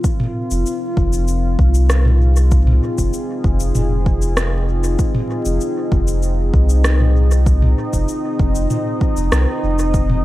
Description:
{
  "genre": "ambient dub",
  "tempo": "97 BPM",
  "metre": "4/4",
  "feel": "straight",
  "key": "F minor",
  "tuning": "A4 = 435 Hz",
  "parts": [
    { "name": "deep dark ambient pad", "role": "sustained chords", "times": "0.0-10.2 s", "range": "C4 to Eb5", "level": "-22 LUFS", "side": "left 1 dB", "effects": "chorus, built-in reverb" },
    { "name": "electronic kick drum", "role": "drums", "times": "0.0-10.1 s", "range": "none", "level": "-18 LUFS", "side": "equal", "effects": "none" },
    { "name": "organic electronic drum kit", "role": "drums", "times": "0.0-10.2 s", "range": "cabasa, rim click, toms", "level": "-22 LUFS", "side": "equal", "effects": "overdrive, dub echo" },
    { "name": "warm sub bass", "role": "bass", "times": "0.5-10.2 s", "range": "F1 to C2", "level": "-15 LUFS", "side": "equal", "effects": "none" }
  ],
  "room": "digital ambience",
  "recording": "vinyl crackle",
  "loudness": "-14 LUFS",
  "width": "side -16 dB against mid",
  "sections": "0.0-10.2 A section",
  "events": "none",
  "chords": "0.0 Fm7",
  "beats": "| 0.04 0.66 1.28 1.90 | 2.52 3.13 3.75 4.37 | 4.99 5.61 6.23 6.85 | 7.46 8.08 8.70 9.32 | 9.94"
}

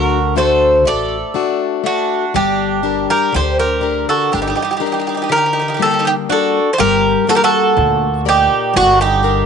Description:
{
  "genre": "greek folk",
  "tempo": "122 BPM (eighths)",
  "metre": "9/8",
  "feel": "straight",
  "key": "G harmonic minor",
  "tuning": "A4 = 439 Hz",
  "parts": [
    { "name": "Greek bouzouki", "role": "melody", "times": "0.0-9.5 s", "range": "F#4 to D5", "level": "-15 LUFS", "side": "right 1 dB", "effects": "none" },
    { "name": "Greek bouzouki", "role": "second line", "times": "0.0-9.5 s", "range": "D4 to A4", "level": "-20 LUFS", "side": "right 11 dB", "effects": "none" },
    { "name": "picked plugged-in steel-string acoustic guitar", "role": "accompaniment", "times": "0.0-9.5 s", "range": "Bb2 to D5", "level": "-19 LUFS", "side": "left 14 dB", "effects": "none" },
    { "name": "upright bass", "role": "bass", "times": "0.0-9.5 s", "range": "G1 to D2", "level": "-21 LUFS", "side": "right 1 dB", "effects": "none" }
  ],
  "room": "light reverb, small room ambience",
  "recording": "1960s-style stereo with parts hard left and right, nothing above 10.6 kHz",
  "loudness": "-12 LUFS",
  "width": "side -6 dB against mid",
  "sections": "0.0-6.8 A section; 6.8-9.5 B section",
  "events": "none",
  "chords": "0.0 D; 2.4 Gm",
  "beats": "0.38 0.87 1.37 1.86 | 2.35 2.85 3.34 3.84 4.33 4.82 5.32 5.81 6.30 | 6.79 7.29 7.78 8.27 8.76 9.26"
}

